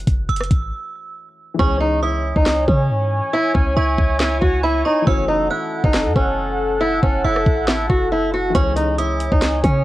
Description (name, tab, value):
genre	hip hop, trap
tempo	138 BPM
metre	4/4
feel	half-time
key	C# minor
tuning	A4 = 435 Hz
part	dark baby grand piano	accompaniment	0.0-9.8 s	E3 to C#5	-29 LUFS	left 6 dB	low-pass filter, cassette tape
part	clean 808-style bass	bass	0.0-9.8 s	F#1 to C#3	-21 LUFS	equal	none
part	trap drum kit	drums	0.0-9.7 s	handclaps, hi-hat, kick drum, rim click, snare drum	-19 LUFS	equal	cassette tape
part	metallic FM bell	second line	0.3-9.8 s	B5 to F#6	-28 LUFS	right 6 dB	chorus, cassette tape, analog delay
part	fingerpicked swing-style acoustic guitar	melody	1.6-9.8 s	C#4 to F#4	-20 LUFS	right 1 dB	low-pass filter, cassette tape
part	sweeping resonant pad	sustained chords	1.6-9.8 s	A4 to G#5	-25 LUFS	left 1 dB	chorus, cassette tape
room	little or no reverb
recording	home recording on cassette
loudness	-16 LUFS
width	side -16 dB against mid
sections	0.0-9.8 A section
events	break 0.0-1.6; filter sweep 0.0-1.6; hi-hats muted 1.6-8.6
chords	0.0 F#m7; 1.6 C#m; 5.1 F#m7; 8.6 C#m